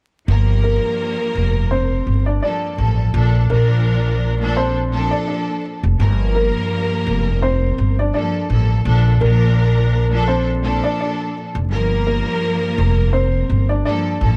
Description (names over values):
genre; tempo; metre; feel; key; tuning
hip hop, boom-bap hip-hop; 84 BPM; 4/4; swing 55% on 16ths; G minor; A4 = 439 Hz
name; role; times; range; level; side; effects
clear studio string section; accompaniment; 0.3-14.4 s; G2 to Bb4; -24 LUFS; equal; cassette tape
upright bass; bass; 0.3-14.4 s; F1 to Bb1; -19 LUFS; equal; none
dark upright piano; melody; 0.6-14.2 s; Bb3 to D5; -25 LUFS; equal; analog delay
room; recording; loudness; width
light reverb; vinyl crackle; -18 LUFS; mono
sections
0.3-6.0 A section; 6.0-14.4 B section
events
none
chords
0.3 Gm9; 3.1 Bbmaj7; 6.0 Gm9; 8.9 Bbmaj7; 11.7 Gm9